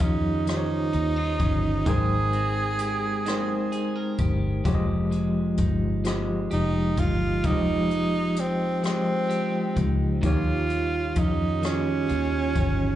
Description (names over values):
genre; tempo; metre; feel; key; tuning
slow six-eight R&B; 43 BPM (dotted quarters); 6/8; straight; F minor; A4 = 440 Hz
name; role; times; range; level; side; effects
clear tenor saxophone; melody; 0.0-13.0 s; C4 to Ab4; -27 LUFS; right 4 dB; slapback echo, tape echo
electric guitar at the edge of break-up; second line; 0.0-13.0 s; Eb3 to Bb4; -34 LUFS; right 4 dB; slapback echo
overdriven tine electric piano; accompaniment; 0.0-13.0 s; Eb3 to G5; -28 LUFS; left 2 dB; medium tremolo, slapback echo
vintage muted fingered electric bass; bass; 0.0-13.0 s; F1 to F2; -28 LUFS; left 1 dB; none
jazz brush drum kit; drums; 0.0-12.8 s; hi-hat, kick drum, rim click; -29 LUFS; equal; none
room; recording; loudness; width
light reverb; live gig heard through the venue's PA, club reverb, nothing above 10.7 kHz; -22 LUFS; side -12 dB against mid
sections
0.0-13.0 A section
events
none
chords
0.0 Eb9; 1.9 Abmaj9; 4.7 Fm9; 10.2 Eb9